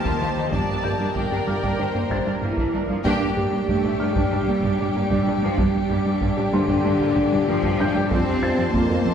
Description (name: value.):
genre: cinematic, hybrid orchestral and electronic film score.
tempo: 95 BPM.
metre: 4/4.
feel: straight.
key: G minor.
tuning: A4 = 440 Hz.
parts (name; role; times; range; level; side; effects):
warm symphonic violin section; melody; 0.0-9.1 s; G5 to A5; -32 LUFS; left 3 dB; none.
bright symphonic violin section; second line; 0.0-9.1 s; Bb3 to C5; -32 LUFS; left 2 dB; none.
rich symphonic viola section; accompaniment; 0.0-9.1 s; Bb3 to D5; -32 LUFS; right 1 dB; none.
metallic inharmonic drone; sustained chords; 0.0-9.1 s; F3 to F5; -27 LUFS; left 1 dB; chorus, built-in reverb.
taiko ensemble; drums; 0.0-9.1 s; none; -30 LUFS; equal; none.
felt-muted upright piano; texture; 0.0-9.1 s; C5 to A6; -35 LUFS; left 1 dB; tape echo.
harp-like synth pluck; arpeggios; 0.1-9.1 s; Eb3 to G4; -30 LUFS; equal; none.
round analog bass; riff; 0.1-9.1 s; Eb2 to G3; -28 LUFS; right 1 dB; none.
rich symphonic cello section; bass; 0.1-9.1 s; Eb2 to C4; -25 LUFS; equal; none.
clear symphonic double bass section; bass; 0.2-9.1 s; G1 to G2; -29 LUFS; right 1 dB; none.
room: wet scoring stage reverb, RT60 1.5 s.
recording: heard from further back in the room.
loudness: -19 LUFS.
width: side -8 dB against mid.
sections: 0.0-3.1 A section; 3.1-9.1 A section.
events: band accent 3.1-3.7.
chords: 0.0 Ebadd9; 0.5 Gm; 8.1 F.